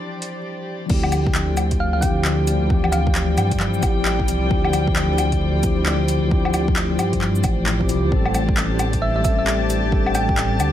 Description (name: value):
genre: future garage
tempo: 133 BPM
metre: 4/4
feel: swing 62% on 16ths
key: D minor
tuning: A4 = 440 Hz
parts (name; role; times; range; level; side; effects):
- mellow tine electric piano; accompaniment; 0.0-10.7 s; E3 to A4; -24 LUFS; left 2 dB; medium stereo tremolo, sidechain pumping, ping-pong delay
- dark studio string section; sustained chords; 0.0-10.7 s; G3 to A5; -28 LUFS; left 2 dB; vintage 12-bit sampler grit, sidechain pumping
- deep house drum kit; drums; 0.2-10.7 s; cabasa, crash cymbal, handclaps, hi-hat, woodblock; -25 LUFS; left 1 dB; overdrive
- dark detuned saw bass; bass; 0.9-10.7 s; A1 to G2; -22 LUFS; equal; sidechain pumping
- electronic kick drum; drums; 0.9-10.4 s; none; -22 LUFS; equal; overdrive
- thumb-piano-like synth pluck; melody; 1.8-3.3, 9.0-10.5 s; E5 to G5; -26 LUFS; equal; chorus, ping-pong delay
- drifting glass-harmonics texture; texture; 9.2-10.7 s; D4 to D5; -35 LUFS; left 1 dB; chorus, built-in reverb
room: moderate recital hall reverb, RT60 1.5 s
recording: vinyl crackle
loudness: -17 LUFS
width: side -11 dB against mid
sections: 0.9-10.7 A section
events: none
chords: 0.0 Dm11; 8.1 Am7